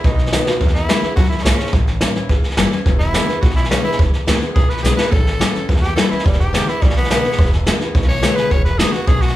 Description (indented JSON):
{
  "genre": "rockabilly",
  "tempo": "212 BPM",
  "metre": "4/4",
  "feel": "straight",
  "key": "E mixolydian",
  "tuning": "A4 = 439 Hz",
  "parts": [
    { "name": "growling tenor saxophone", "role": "melody", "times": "0.0-9.4 s", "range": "G3 to C#5", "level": "-23 LUFS", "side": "equal", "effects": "none" },
    { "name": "picked steel-string acoustic guitar", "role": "accompaniment", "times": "0.0-9.4 s", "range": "E2 to F#4", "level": "-21 LUFS", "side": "left 3 dB", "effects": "none" },
    { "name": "upright bass", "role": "bass", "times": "0.0-9.4 s", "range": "E1 to E2", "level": "-21 LUFS", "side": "equal", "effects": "none" },
    { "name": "jazz brush drum kit", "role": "drums", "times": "0.0-9.3 s", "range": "hi-hat, kick drum, snare drum", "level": "-16 LUFS", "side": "equal", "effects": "none" }
  ],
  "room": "moderate large studio reverb, RT60 1.1 s",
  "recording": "band playing live in one room",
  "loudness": "-14 LUFS",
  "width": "side -14 dB against mid",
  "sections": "0.6-9.4 A section",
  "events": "drum fill 0.5, 4.8; tenor saxophone solo 0.6-9.4",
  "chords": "0.0 B7; 0.6 E7; 1.7 A7; 2.9 E7; 5.1 A7; 6.3 E7",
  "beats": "0.04 0.32 | 0.61 0.89 1.17 1.45 | 1.74 2.02 2.30 2.58 | 2.87 3.15 3.43 3.71 | 4.00 4.28 4.56 4.84 | 5.12 5.41 5.69 5.97 | 6.25 6.54 6.82 7.10 | 7.38 7.66 7.95 8.23 | 8.51 8.79 9.07 9.36"
}